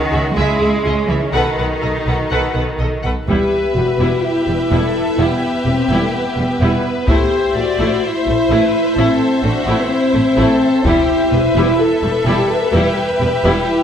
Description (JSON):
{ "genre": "cinematic, epic orchestral film score", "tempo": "126 BPM", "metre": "4/4", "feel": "straight", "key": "E minor from 3.3 s", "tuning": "A4 = 443 Hz", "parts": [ { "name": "clear symphonic violin section", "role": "second line", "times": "0.0-13.8 s", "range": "C#4 to E5", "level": "-24 LUFS", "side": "left 2 dB", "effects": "none" }, { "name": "dark French horn section", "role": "sustained chords", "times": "0.0-13.8 s", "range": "A3 to B4", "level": "-17 LUFS", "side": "left 1 dB", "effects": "none" }, { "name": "rich symphonic cello section", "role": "bass", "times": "0.0-13.5 s", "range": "E2 to G#3", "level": "-23 LUFS", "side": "right 2 dB", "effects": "none" }, { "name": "rich studio violin section", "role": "melody", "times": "0.1-13.8 s", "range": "E4 to F#5", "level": "-24 LUFS", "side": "left 2 dB", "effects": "none" }, { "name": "clear symphonic viola section", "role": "accompaniment", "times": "0.1-13.7 s", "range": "G3 to B4", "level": "-22 LUFS", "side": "right 1 dB", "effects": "none" }, { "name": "rich symphonic double bass section", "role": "bass", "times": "0.1-13.5 s", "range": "E1 to C#2", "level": "-21 LUFS", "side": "right 1 dB", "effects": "none" }, { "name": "taiko ensemble", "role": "drums", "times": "3.3-11.8 s", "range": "none", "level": "-21 LUFS", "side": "equal", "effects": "none" } ], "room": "wet recital hall reverb, RT60 1.4 s", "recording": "faint mains hum", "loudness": "-13 LUFS", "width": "side -8 dB against mid", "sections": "0.0-3.3 A section; 3.3-13.8 B section", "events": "none", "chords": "0.0 C#madd9; 1.3 B7; 3.3 Em; 7.1 Am; 10.9 Em", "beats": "0.36 0.84 | 1.33 1.82 2.31 2.79 | 3.27 3.75 4.23 4.71 | 5.18 5.66 6.13 6.60 | 7.08 7.55 8.03 8.50 | 8.97 9.44 9.91 10.38 | 10.85 11.33 11.80 12.27 | 12.74 13.21 13.68" }